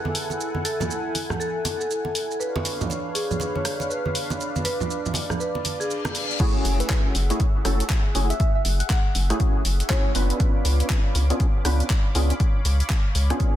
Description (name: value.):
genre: deep house.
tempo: 120 BPM.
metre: 4/4.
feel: swing 61% on 16ths.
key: F# minor.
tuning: A4 = 440 Hz.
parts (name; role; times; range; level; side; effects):
marimba with medium mallets; melody; 0.0-6.3 s; G#4 to C#5; -30 LUFS; equal; vintage 12-bit sampler grit, digital delay.
warm analog pad; sustained chords; 0.0-13.6 s; D4 to D6; -32 LUFS; equal; chorus, sidechain pumping.
deep house drum kit; drums; 0.1-13.5 s; crash cymbal, handclaps, hi-hat, rim click, shaker; -29 LUFS; equal; soft clipping on snare.
congas; percussion; 0.1-6.1 s; none; -30 LUFS; right 3 dB; sidechain pumping on perc.
reverse cymbal; sound effects; 5.8-6.4 s; none; -32 LUFS; left 6 dB; none.
percussive organ stab; stabs; 6.4-13.6 s; A3 to B4; -28 LUFS; equal; ensemble chorus, sidechain pumping, dub echo.
electronic kick drum; drums; 6.4-13.5 s; none; -22 LUFS; equal; none.
rubbery square bass; bass; 6.6-13.3 s; F#1 to C#2; -21 LUFS; equal; sidechain pumping.
soft struck synth lead; melody; 6.8-10.5 s; B4 to F#5; -33 LUFS; left 1 dB; chorus, phaser, dub echo.
room: light reverb, digital ambience.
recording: dense, heavily limited modern master.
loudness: -21 LUFS.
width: side -12 dB against mid.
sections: 0.0-6.4 A section; 6.4-13.6 B section.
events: reverse cymbal 5.8-6.4; drop 6.4-13.6.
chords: 0.0 F#m9; 2.4 C#7b9; 6.4 F#m9; 10.4 C#7b9.